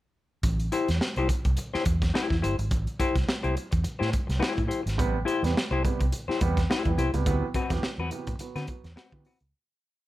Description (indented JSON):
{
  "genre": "funk",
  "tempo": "106 BPM",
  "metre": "4/4",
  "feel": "swing 56% on 16ths",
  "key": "A dorian",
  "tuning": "A4 = 440 Hz",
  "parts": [
    { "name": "vintage muted fingered electric bass", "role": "bass", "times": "0.4-9.5 s", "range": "G1 to D3", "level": "-28 LUFS", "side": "equal", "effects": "none" },
    { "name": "crunchy breakbeat drum kit", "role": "drums", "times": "0.4-9.5 s", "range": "hi-hat, kick drum, snare drum", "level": "-28 LUFS", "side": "equal", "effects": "none" },
    { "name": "semi-hollow electric guitar", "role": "accompaniment", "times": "0.7-9.5 s", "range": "C4 to C5", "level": "-29 LUFS", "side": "left 4 dB", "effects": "harmonic tremolo" },
    { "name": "warm upright piano", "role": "stabs", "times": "5.0-9.3 s", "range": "A2 to B3", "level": "-32 LUFS", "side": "right 4 dB", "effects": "none" }
  ],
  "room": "light reverb",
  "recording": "none",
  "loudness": "-24 LUFS",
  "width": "side -16 dB against mid",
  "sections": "0.4-9.5 breakdown",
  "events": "fade-out 7.3-9.5",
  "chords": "0.4 Am7; 7.3 D13",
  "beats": "| 0.44 1.01 1.58 2.15 | 2.72 3.29 3.85 4.42 | 4.99 5.56 6.12 6.69 | 7.26 7.83 8.40 8.97"
}